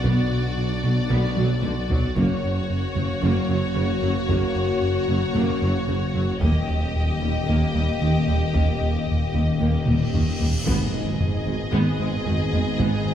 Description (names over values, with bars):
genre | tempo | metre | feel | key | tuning
cinematic, hybrid orchestral and electronic film score | 113 BPM | 4/4 | straight | G# minor | A4 = 441 Hz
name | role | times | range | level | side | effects
warm symphonic violin section | melody | 0.0-13.1 s | C#5 to D#5 | -32 LUFS | left 3 dB | none
rich symphonic violin section | second line | 0.0-13.1 s | F#4 to G#4 | -33 LUFS | left 2 dB | none
warm symphonic viola section | accompaniment | 0.0-13.0 s | C#3 to B3 | -32 LUFS | right 2 dB | none
mellow French horn section | sustained chords | 0.0-13.1 s | A#3 to G4 | -31 LUFS | left 3 dB | none
warbly tape-like pad | sustained chords | 0.0-13.1 s | D#3 to D#5 | -31 LUFS | left 5 dB | chorus, built-in reverb
round analog bass | riff | 0.0-13.1 s | D#2 to B2 | -26 LUFS | right 1 dB | none
clear symphonic double bass section | bass | 0.0-12.9 s | F#1 to D#2 | -30 LUFS | right 2 dB | none
dark tuba | bass | 0.0-12.9 s | F#1 to D#2 | -29 LUFS | right 2 dB | none
detuned saw bass | bass | 0.0-13.1 s | D#1 to B1 | -30 LUFS | equal | none
rich symphonic cello section | bass | 0.0-12.9 s | D#2 to B2 | -30 LUFS | right 1 dB | none
taiko ensemble | drums | 0.0-13.1 s | none | -28 LUFS | equal | none
cymbal swell and impact | sound effects | 10.0-12.8 s | none | -32 LUFS | equal | none
dark trombone section | sustained chords | 10.7-13.1 s | G#2 to G#3 | -33 LUFS | right 3 dB | none
room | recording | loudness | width
moderate scoring stage reverb, RT60 1.6 s | small room ambience | -20 LUFS | side -10 dB against mid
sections
0.0-10.7 A section; 10.7-13.1 B section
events
drum fill 1.4-2.2, 9.9-10.7; cymbal swell 10.0-10.7; impact 10.7-12.8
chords
0.0 Bm; 2.2 F#; 6.4 D#; 10.7 G#m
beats
| 0.04 0.57 1.11 1.64 | 2.17 2.70 3.23 3.76 | 4.29 4.82 5.35 5.88 | 6.42 6.95 7.48 8.01 | 8.54 9.07 9.60 10.13 | 10.66 11.19 11.72 12.26 | 12.79